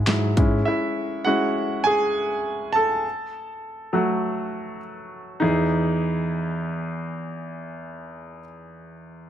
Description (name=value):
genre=piano-driven pop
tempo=101 BPM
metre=4/4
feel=straight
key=E major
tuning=A4 = 440 Hz
part: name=clear concert grand piano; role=accompaniment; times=0.0-9.3 s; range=E2 to A5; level=-23 LUFS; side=equal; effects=none
part: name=bell-like tine electric piano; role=bass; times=0.1-0.6 s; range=G#2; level=-23 LUFS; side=equal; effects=phaser
part: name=pop drum kit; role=drums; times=0.1-0.5 s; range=handclaps, hi-hat, kick drum, snare drum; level=-22 LUFS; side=equal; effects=none
room=moderate large studio reverb, RT60 1.4 s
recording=none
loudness=-21 LUFS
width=side -10 dB against mid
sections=0.0-5.4 A section; 5.4-7.8 B section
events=grand piano solo 0.0-5.4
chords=0.4 C#m/G#; 3.0 F#m; 5.4 Emaj7